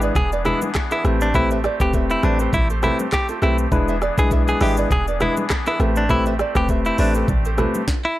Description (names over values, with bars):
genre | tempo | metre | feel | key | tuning
afrobeats | 101 BPM | 4/4 | swing 55% on 16ths | A minor | A4 = 441 Hz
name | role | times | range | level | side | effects
bell-like tine electric piano | accompaniment | 0.0-7.8 s | G#3 to B4 | -23 LUFS | left 2 dB | none
pipe organ, soft reed | sustained chords | 0.0-7.9 s | E3 to G#4 | -28 LUFS | left 1 dB | none
nylon-string guitar | riff | 0.0-7.7 s | E4 to E5 | -28 LUFS | right 6 dB | tape echo
warm 808-style bass | bass | 0.0-7.7 s | E1 to B1 | -22 LUFS | equal | none
afro-pop drum kit | drums | 0.0-8.0 s | handclaps, hi-hat, kick drum, rim click, shaker, snare drum | -23 LUFS | equal | none
direct-recorded clean electric guitar | melody | 0.2-8.2 s | D4 to G#4 | -24 LUFS | equal | tape echo
congas and bongos | percussion | 0.2-7.9 s | none | -30 LUFS | right 1 dB | none
room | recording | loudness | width
little or no reverb | dry, gritty hardware recording | -17 LUFS | side -15 dB against mid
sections
0.0-8.2 A section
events
none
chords
0.0 E7; 1.0 Am9; 3.7 E7; 5.8 Am9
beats
0.15 0.75 | 1.34 1.94 2.53 3.12 | 3.72 4.31 4.91 5.50 | 6.09 6.69 7.28 7.88